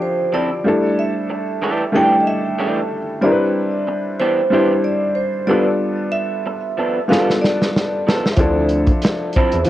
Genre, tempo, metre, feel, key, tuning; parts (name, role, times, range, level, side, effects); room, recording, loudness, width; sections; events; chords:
R&B, neo-soul; 93 BPM; 4/4; swing 55% on 16ths; D dorian; A4 = 441 Hz
vibraphone with medium hard mallets; melody; 0.0-9.7 s; C5 to G5; -21 LUFS; right 1 dB; cassette tape, tape echo
clear upright piano; accompaniment; 0.0-9.7 s; F3 to C5; -19 LUFS; left 1 dB
electric guitar through a small old amp; second line; 0.3-9.6 s; E3 to A4; -23 LUFS; right 2 dB
warm soul drum kit; drums; 7.1-9.7 s; hi-hat, kick drum, snare drum; -18 LUFS; equal; cassette tape
fat analog bass; bass; 8.4-9.7 s; D2 to E2; -20 LUFS; equal; transformer saturation
light reverb, studio reverb; home recording on cassette; -15 LUFS; side -14 dB against mid
0.0-9.7 A section
drum fill 7.1-8.4
0.0 Dm9; 0.6 A7sus4; 3.2 Cmaj9; 5.5 G9; 8.4 Dm9